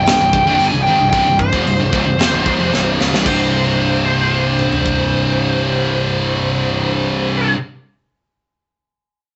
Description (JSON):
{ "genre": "heavy metal", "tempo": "113 BPM", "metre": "4/4", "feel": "straight", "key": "unclear", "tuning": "A4 = 440 Hz", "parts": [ { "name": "bluesy overdriven lead guitar", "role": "melody", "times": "0.0-7.5 s", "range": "C5 to Ab5", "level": "-20 LUFS", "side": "equal", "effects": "distortion" }, { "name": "scooped high-gain guitar", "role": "riff", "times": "0.0-7.6 s", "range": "C2 to Eb3", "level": "-22 LUFS", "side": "equal", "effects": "distortion" }, { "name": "scooped high-gain guitar", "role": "riff", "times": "0.0-7.6 s", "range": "C2 to Eb3", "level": "-22 LUFS", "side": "equal", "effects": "distortion" }, { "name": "fuzz picked electric bass", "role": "bass", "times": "0.0-7.5 s", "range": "C1 to Ab1", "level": "-24 LUFS", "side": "equal", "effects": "overdrive" }, { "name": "tight metal drum kit", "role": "drums", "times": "0.1-5.0 s", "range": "crash cymbal, hi-hat, kick drum, snare drum, toms", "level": "-23 LUFS", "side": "equal", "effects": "none" } ], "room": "moderate studio reverb, RT60 0.6 s", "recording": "rough rehearsal-room recording, warm saturation, nothing above 8.0 kHz", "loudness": "-16 LUFS", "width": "mono", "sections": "0.0-3.3 A section; 3.3-7.5 B section", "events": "drum fill 2.7-3.3", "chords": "0.0 C5", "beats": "0.07 0.60 | 1.13 1.66 2.19 2.72 | 3.25 3.78 4.32 4.85 | 5.38 5.91 6.45 6.98" }